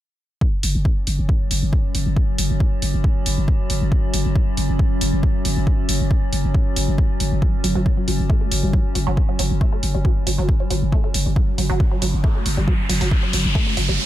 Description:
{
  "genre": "driving peak-time techno",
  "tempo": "137 BPM",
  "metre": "4/4",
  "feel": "straight",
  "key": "F# minor",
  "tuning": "A4 = 440 Hz",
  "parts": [
    { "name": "metallic inharmonic drone", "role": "drone", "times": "1.1-14.0 s", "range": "F#3 to C#4", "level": "-28 LUFS", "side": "left 2 dB", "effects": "chorus, built-in reverb, sidechain pumping" },
    { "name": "electronic kick drum", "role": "drums", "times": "0.4-13.6 s", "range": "none", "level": "-19 LUFS", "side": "equal", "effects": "none" },
    { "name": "growling 808-style bass", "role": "bass", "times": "0.6-14.0 s", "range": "F#1", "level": "-22 LUFS", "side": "equal", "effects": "overdrive, sidechain pumping, low-pass filter" },
    { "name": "electronic hi-hat", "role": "drums", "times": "0.6-13.9 s", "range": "none", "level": "-26 LUFS", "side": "right 1 dB", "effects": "sidechain pumping on hats" },
    { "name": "resonant blip pluck", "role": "riff", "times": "7.4-13.9 s", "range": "F#3 to A3", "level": "-27 LUFS", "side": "right 2 dB", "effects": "phaser, sidechain pumping, ping-pong delay" },
    { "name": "riser", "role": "sound effects", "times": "11.8-14.1 s", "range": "none", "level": "-26 LUFS", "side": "equal", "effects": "none" }
  ],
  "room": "little or no reverb",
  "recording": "none",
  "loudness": "-17 LUFS",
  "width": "side -13 dB against mid",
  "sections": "0.4-14.1 A section",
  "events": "riser 11.8-14.1",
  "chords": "0.4 F#m",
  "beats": "| 0.41 0.85 1.29 1.73 | 2.17 2.60 3.04 3.48 | 3.92 4.36 4.79 5.23 | 5.67 6.11 6.54 6.98 | 7.42 7.86 8.30 8.73 | 9.17 9.61 10.05 10.49 | 10.92 11.36 11.80 12.24 | 12.68 13.11 13.55 13.99"
}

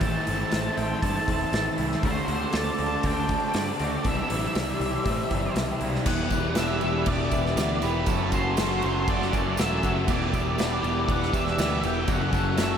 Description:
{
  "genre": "rock, shoegaze and dream pop",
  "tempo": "119 BPM",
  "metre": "4/4",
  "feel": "straight",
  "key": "E minor",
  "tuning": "A4 = 440 Hz",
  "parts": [
    { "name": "octave-fuzz lead guitar", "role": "melody", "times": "0.0-12.8 s", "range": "A4 to A5", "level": "-31 LUFS", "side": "equal", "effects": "distortion, tape echo" },
    { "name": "phased analog pad", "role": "sustained chords", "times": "0.0-12.8 s", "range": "F#4 to E6", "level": "-32 LUFS", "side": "left 1 dB", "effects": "phaser, chorus" },
    { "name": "electric guitar through a small old amp", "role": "arpeggios", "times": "0.0-12.8 s", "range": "E3 to A4", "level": "-36 LUFS", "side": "left 2 dB", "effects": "wide subtle chorus, tape echo" },
    { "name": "overdriven semi-hollow guitar", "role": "riff", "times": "0.0-12.8 s", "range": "E2 to G4", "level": "-33 LUFS", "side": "right 6 dB", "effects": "reverse reverb" },
    { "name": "raw garage guitar", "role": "riff", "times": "0.0-12.8 s", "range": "A2 to B4", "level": "-34 LUFS", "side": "right 2 dB", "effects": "overdrive, lush chorus" },
    { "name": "thick fuzz guitar", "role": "riff", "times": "0.0-12.8 s", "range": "E2 to D4", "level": "-31 LUFS", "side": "left 5 dB", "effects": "distortion, analog chorus" },
    { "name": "modern bright picked electric bass", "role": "bass", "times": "0.0-12.8 s", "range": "E1 to A2", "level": "-30 LUFS", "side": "equal", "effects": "none" },
    { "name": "loose indie drum kit", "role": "drums", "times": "0.0-12.7 s", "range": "crash cymbal, hi-hat, kick drum, snare drum", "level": "-29 LUFS", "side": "equal", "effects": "none" },
    { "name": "tambourine", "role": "percussion", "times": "6.1-12.7 s", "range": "none", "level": "-44 LUFS", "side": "right 9 dB", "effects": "none" }
  ],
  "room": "wet lush hall reverb, RT60 2.7 s",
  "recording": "dreamy mix soaked in reverb",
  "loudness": "-23 LUFS",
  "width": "side -8 dB against mid",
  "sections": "0.0-6.1 A section; 6.1-12.8 B section",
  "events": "none",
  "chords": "0.0 Am; 2.0 D7sus4; 4.1 Cadd9; 6.1 Em7; 8.1 F#m7b5; 10.1 Em7; 12.1 F#m7",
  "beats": "| 0.02 0.52 1.03 1.53 | 2.04 2.54 3.04 3.55 | 4.05 4.56 5.06 5.57 | 6.07 6.58 7.08 7.58 | 8.08 8.59 9.09 9.59 | 10.09 10.59 11.09 11.59 | 12.09 12.59"
}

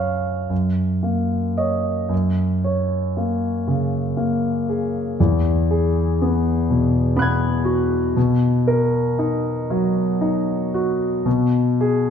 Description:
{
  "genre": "classical, impressionist solo piano",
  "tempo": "39 BPM (dotted quarters)",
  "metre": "6/8",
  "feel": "uneven beats, rubato",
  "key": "F# mixolydian",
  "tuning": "A4 = 440 Hz",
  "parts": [
    { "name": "clear concert grand piano", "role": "solo", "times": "0.0-12.1 s", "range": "E2 to G#6", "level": "-18 LUFS", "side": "equal", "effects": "none" }
  ],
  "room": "wet recital hall reverb, RT60 1.4 s",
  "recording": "none",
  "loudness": "-18 LUFS",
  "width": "side -7 dB against mid",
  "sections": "0.0-12.1 A section",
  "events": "none",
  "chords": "0.0 F#5; 0.5 D#m7/F#; 2.1 F#add9; 5.2 Eadd9; 8.2 Bmaj7; 11.3 B5",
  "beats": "0.51 | 2.12 3.66 | 5.18 6.67 | 8.16 9.71 | 11.26"
}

